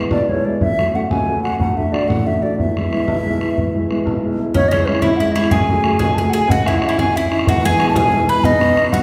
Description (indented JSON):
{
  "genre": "celtic folk, Celtic slide",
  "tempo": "123 BPM (dotted quarters)",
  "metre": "12/8",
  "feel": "straight",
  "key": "E mixolydian, C# minor from 4.5 s",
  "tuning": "A4 = 440 Hz",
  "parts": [
    { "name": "dark upright piano", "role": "accompaniment", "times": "0.0-9.0 s", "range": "E1 to G#4", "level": "-21 LUFS", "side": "equal", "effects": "none" },
    { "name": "bodhran", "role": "percussion", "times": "0.0-9.0 s", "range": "none", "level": "-23 LUFS", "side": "equal", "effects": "none" },
    { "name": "baroque flute", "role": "melody", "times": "0.1-9.0 s", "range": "B4 to B5", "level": "-21 LUFS", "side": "equal", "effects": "none" },
    { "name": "bowl-back mandolin", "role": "second line", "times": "4.5-9.0 s", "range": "C#4 to B4", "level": "-26 LUFS", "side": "equal", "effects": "none" }
  ],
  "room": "wet recital hall reverb, RT60 1.8 s",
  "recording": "heard from further back in the room",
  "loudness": "-17 LUFS",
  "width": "mono",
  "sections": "0.0-4.5 A section; 4.5-9.0 B section",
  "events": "none",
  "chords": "0.0 E; 0.6 F#m; 1.6 D; 2.6 E; 4.5 C#m; 5.5 F#madd9; 6.5 C#madd9; 7.5 E; 8.4 Badd9"
}